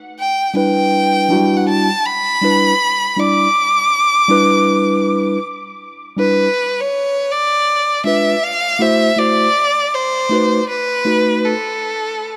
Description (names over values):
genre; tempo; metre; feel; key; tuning
hip hop; 80 BPM; 4/4; swing 65% on 16ths; E minor; A4 = 440 Hz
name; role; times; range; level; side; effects
rich violin; melody; 0.2-12.4 s; A4 to D6; -17 LUFS; equal; tape echo
mellow tine electric piano; accompaniment; 0.5-11.5 s; F#3 to D5; -18 LUFS; equal; none
room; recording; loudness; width
light reverb, small room ambience; none; -15 LUFS; mono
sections
0.0-6.2 A section; 6.2-12.4 B section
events
violin solo 6.2-12.4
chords
0.2 Em7; 7.7 Fdim7; 9.2 F#m7b5; 10.7 B7